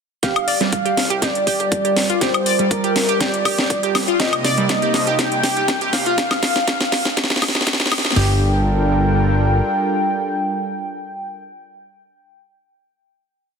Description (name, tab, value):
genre	progressive house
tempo	121 BPM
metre	4/4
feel	straight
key	G minor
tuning	A4 = 440 Hz
part	warm velvety synth lead	melody	0.2-11.4 s	Bb4 to G5	-22 LUFS	equal	chorus, ping-pong delay
part	warm analog pad	sustained chords	0.2-11.4 s	C3 to A5	-25 LUFS	right 2 dB	chorus, sidechain pumping
part	analog pluck	arpeggios	0.2-8.4 s	G3 to D5	-22 LUFS	right 1 dB	chorus, sidechain pumping, ping-pong delay
part	fat analog bass	bass	0.2-9.6 s	D1 to F2	-22 LUFS	equal	sidechain pumping, high-pass filter
part	house drum kit	drums	0.2-8.3 s	hi-hat, kick drum, snare drum	-26 LUFS	left 1 dB	high-pass filter on kick, high-pass filter on snare, high-pass filter on hats, high-pass filter on room
part	house drum kit	drums	0.2-8.2 s	hi-hat, snare drum, woodblock	-20 LUFS	left 1 dB	none
room	moderate lush hall reverb, RT60 2.1 s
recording	dense, heavily limited modern master, high-pass filter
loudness	-16 LUFS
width	side -6 dB against mid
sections	0.2-8.2 build; 8.2-12.1 final chord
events	build-up 0.2-8.2; drum fill 0.2-8.2; filter sweep on analog synth pad 0.2-6.2; filter sweep 0.2-8.2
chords	0.2 Gm7; 4.2 Cm7; 6.2 N.C.; 8.2 Gm7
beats	| 0.23 0.73 1.22 1.72 | 2.21 2.71 3.21 3.70 | 4.20 4.69 5.19 5.68 | 6.18 6.68 7.17 7.67 | 8.16 8.66 9.16 9.65 | 10.15 10.64 11.14